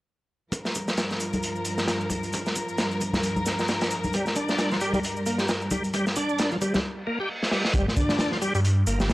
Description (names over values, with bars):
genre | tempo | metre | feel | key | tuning
breakbeat, breaks | 133 BPM | 4/4 | swing 58% on 16ths | G minor pentatonic | A4 = 440 Hz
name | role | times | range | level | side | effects
warm studio string section | sustained chords | 0.5-6.8 s | G2 to Bb4 | -30 LUFS | equal | sidechain pumping
crunchy breakbeat drum kit | drums | 0.5-9.1 s | hi-hat, kick drum, snare drum | -27 LUFS | equal | high-pass filter on kick, high-pass filter on hats, high-pass filter on snare, high-pass filter on room
shaker | drums | 0.5-9.1 s | none | -39 LUFS | left 1 dB | overdrive
congas | percussion | 1.3-8.1 s | none | -31 LUFS | left 1 dB | none
bright tonewheel organ | riff | 4.1-9.1 s | F3 to G4 | -27 LUFS | equal | chorus vibrato, slow rotary speaker, vintage 12-bit sampler grit, tape echo
reverse cymbal | sound effects | 7.0-7.7 s | none | -32 LUFS | right 1 dB | none
phased detuned saw bass | bass | 7.7-9.1 s | G1 to G2 | -22 LUFS | equal | phaser
room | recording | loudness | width
light reverb, small room ambience | dry, gritty hardware recording, transformer saturation, cassette tape | -23 LUFS | side -18 dB against mid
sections
0.5-7.7 A section; 7.7-9.1 B section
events
reverse cymbal 7.0-7.7; drum fill 7.4-7.7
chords
0.5 Gm7; 7.7 Gm